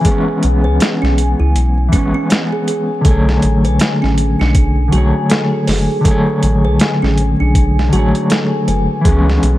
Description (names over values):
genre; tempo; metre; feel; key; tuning
trip hop; 80 BPM; 4/4; swing 59% on 16ths; B dorian; A4 = 440 Hz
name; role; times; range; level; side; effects
mellow electric guitar; accompaniment; 0.0-9.6 s; D3 to C#5; -16 LUFS; left 1 dB; tremolo, tape echo
deep dark ambient pad; sustained chords; 0.0-9.6 s; G#4 to G#5; -23 LUFS; left 2 dB; chorus, built-in reverb
music box; arpeggios; 0.0-9.3 s; C#4 to B4; -22 LUFS; right 3 dB; tape echo
dusty soul sampler-style drum kit; drums; 0.0-9.6 s; hi-hat, kick drum, snare drum; -16 LUFS; equal; overdrive
soft dub sub bass; bass; 0.4-9.6 s; F#1 to C#2; -14 LUFS; equal; tube saturation
room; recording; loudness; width
digital ambience; vinyl crackle; -11 LUFS; side -15 dB against mid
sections
0.0-9.6 A section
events
none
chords
0.0 C#m7; 3.1 Bm9; 9.1 C#m7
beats
| 0.05 0.80 1.55 2.30 | 3.05 3.80 4.55 5.30 | 6.05 6.80 7.55 8.30 | 9.05